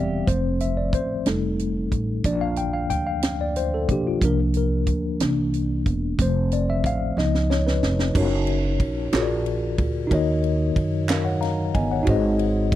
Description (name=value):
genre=slow gospel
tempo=61 BPM (dotted quarters)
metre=6/8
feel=straight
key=F major, F# major from 8.1 s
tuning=A4 = 440 Hz
part: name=mellow tine electric piano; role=accompaniment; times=0.0-12.8 s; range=G#2 to A#5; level=-23 LUFS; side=left 2 dB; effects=medium stereo tremolo
part: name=upright bass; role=bass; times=0.0-12.8 s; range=E1 to F#2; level=-25 LUFS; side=right 1 dB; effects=none
part: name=tight funk drum kit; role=drums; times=0.3-12.8 s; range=crash cymbal, hi-hat, kick drum, ride cymbal, snare drum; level=-26 LUFS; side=right 1 dB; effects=none
part: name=group handclap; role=percussion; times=9.1-11.4 s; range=none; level=-31 LUFS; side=right 5 dB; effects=none
room=studio reverb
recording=dry, close 1970s-style studio recording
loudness=-20 LUFS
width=side -13 dB against mid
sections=0.0-8.1 A section; 8.1-12.8 B section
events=tine electric piano solo 0.0-8.1; drum fill 7.2-8.1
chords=0.3 F; 1.3 F7; 2.2 Bb; 4.2 C7sus4; 5.2 C7; 6.2 F; 7.2 Db7; 8.1 F#6; 9.1 A#7b13; 10.1 D#m7; 12.1 G#7